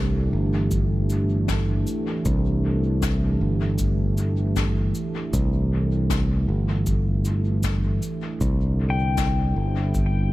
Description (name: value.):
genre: ambient dub.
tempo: 78 BPM.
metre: 4/4.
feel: swing 58% on 16ths.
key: C major.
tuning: A4 = 440 Hz.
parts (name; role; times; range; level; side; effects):
warm analog pad; sustained chords; 0.0-10.3 s; D3 to G4; -27 LUFS; right 2 dB; chorus.
fingered electric bass; bass; 0.0-10.3 s; G1 to C2; -22 LUFS; equal; none.
cabasa and snare drum; drums; 0.7-10.1 s; none; -34 LUFS; left 5 dB; dub echo.
electronic kick drum; drums; 0.7-10.1 s; none; -28 LUFS; equal; overdrive.
pedal steel guitar; arpeggios; 8.9-10.3 s; G5; -29 LUFS; left 9 dB; dub echo.
room: small room ambience.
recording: echo-heavy mix.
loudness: -20 LUFS.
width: side -17 dB against mid.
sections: 0.0-10.3 A section.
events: none.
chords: 0.0 Cadd9.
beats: 0.72 1.49 | 2.25 3.02 3.79 4.56 | 5.33 6.10 6.87 7.64 | 8.41 9.18 9.95.